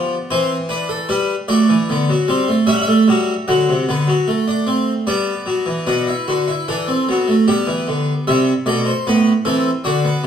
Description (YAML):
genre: classical, baroque-style 3-part fugue for harpsichord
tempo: 76 BPM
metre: 3/4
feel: straight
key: unclear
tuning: A4 = 440 Hz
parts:
  - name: harpsichord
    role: solo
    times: 0.0-10.3 s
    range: A2 to F#5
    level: -15 LUFS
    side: equal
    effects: none
room: wet stone room reverb, RT60 1.1 s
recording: heard from further back in the room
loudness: -15 LUFS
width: side -8 dB against mid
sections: 0.0-5.9 A section; 5.9-10.3 B section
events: none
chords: 0.3 C/E; 1.1 G; 2.7 A7/G; 3.5 D; 5.1 G; 5.9 Bm; 7.5 Em; 8.3 Am